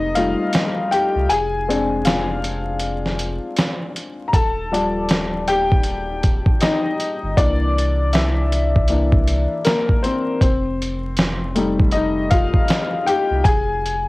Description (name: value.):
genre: lo-fi hip hop.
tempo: 79 BPM.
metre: 4/4.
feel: swing 62% on 16ths.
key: unclear.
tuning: A4 = 440 Hz.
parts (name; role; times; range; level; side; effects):
warm upright piano; accompaniment; 0.0-14.1 s; E3 to Bb5; -20 LUFS; left 2 dB; cassette tape.
warm sub bass; bass; 0.0-14.1 s; Eb1 to C2; -23 LUFS; equal; none.
dusty soul sampler-style drum kit; drums; 0.2-14.1 s; hi-hat, kick drum, snare drum; -19 LUFS; equal; cassette tape.
room: light reverb.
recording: home recording on cassette, vinyl crackle.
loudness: -16 LUFS.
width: side -20 dB against mid.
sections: 0.0-14.1 A section.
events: break 0.0-4.3; upright piano solo 0.0-14.1.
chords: 0.0 F9; 1.3 Fm6; 4.3 Ebmaj9; 7.4 C7; 10.4 F9; 13.4 Fm.